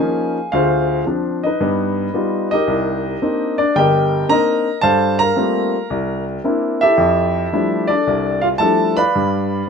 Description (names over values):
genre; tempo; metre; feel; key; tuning
solo jazz; 112 BPM; 4/4; swing 67% on 8ths; C minor; A4 = 440 Hz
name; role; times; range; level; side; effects
warm baby grand piano; solo; 0.0-9.7 s; G1 to B5; -15 LUFS; equal; none
room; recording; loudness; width
moderate studio reverb, RT60 0.7 s; minimal, uncompressed stereo recording; -15 LUFS; side -6 dB against mid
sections
0.0-9.7 A section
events
none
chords
0.0 Db69; 0.5 Dm7b5; 1.6 G7b13; 2.7 Cm9; 4.8 Gm11; 5.9 C9; 7.0 Fmaj13; 9.1 G7